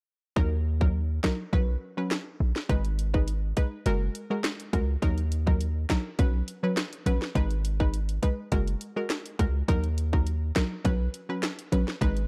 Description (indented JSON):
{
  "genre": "dancehall",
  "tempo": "103 BPM",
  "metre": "4/4",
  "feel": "straight",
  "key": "Eb minor",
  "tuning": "A4 = 438 Hz",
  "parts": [
    { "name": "analog pluck", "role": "accompaniment", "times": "0.4-12.2 s", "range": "Gb3 to B4", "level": "-34 LUFS", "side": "equal", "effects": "chorus" },
    { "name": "hard-hitting 808-style bass", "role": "bass", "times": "0.4-12.3 s", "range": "Gb1 to Eb2", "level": "-29 LUFS", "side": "equal", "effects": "none" },
    { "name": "island pop drum kit", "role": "drums", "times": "0.4-12.3 s", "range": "finger snaps, hi-hat, kick drum, snare drum", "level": "-30 LUFS", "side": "equal", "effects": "none" }
  ],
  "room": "digital ambience",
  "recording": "dark, warm production",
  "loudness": "-28 LUFS",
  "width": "mono",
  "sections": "0.4-12.3 A section",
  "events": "none",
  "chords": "0.4 Ebm; 1.5 Bsus2; 2.7 Abm; 3.9 Gbadd9; 5.0 Ebm; 6.2 Bsus2; 7.4 Abm; 8.5 Gbadd9; 9.7 Ebm; 10.8 Bsus2"
}